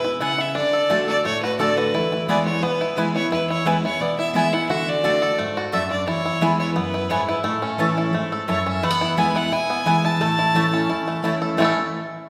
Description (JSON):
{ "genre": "bluegrass", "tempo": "174 BPM", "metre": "4/4", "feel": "straight", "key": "unclear", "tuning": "A4 = 441 Hz", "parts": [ { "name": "clear fiddle", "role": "melody", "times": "0.0-11.2 s", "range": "A4 to A5", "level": "-26 LUFS", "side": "equal", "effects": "none" }, { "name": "picked steel-string acoustic guitar", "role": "accompaniment", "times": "0.0-11.7 s", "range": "E2 to F#4", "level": "-27 LUFS", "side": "equal", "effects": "none" }, { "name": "bluegrass banjo", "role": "arpeggios", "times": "0.0-11.8 s", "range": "E3 to A4", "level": "-27 LUFS", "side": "equal", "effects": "none" }, { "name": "mandolin", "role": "stabs", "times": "0.2-11.7 s", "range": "A3 to A5", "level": "-29 LUFS", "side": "equal", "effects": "none" }, { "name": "lap resonator guitar", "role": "second line", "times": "8.8-11.8 s", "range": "A4 to C#5", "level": "-30 LUFS", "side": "equal", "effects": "none" } ], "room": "wet scoring stage reverb, RT60 1.7 s", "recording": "recorded in a church or concert hall", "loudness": "-21 LUFS", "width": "mono", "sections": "0.0-8.8 A section; 8.8-11.6 B section", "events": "none", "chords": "0.0 E; 0.6 D; 1.9 E; 4.7 D; 6.1 E; 7.5 A; 8.8 E; 10.2 A" }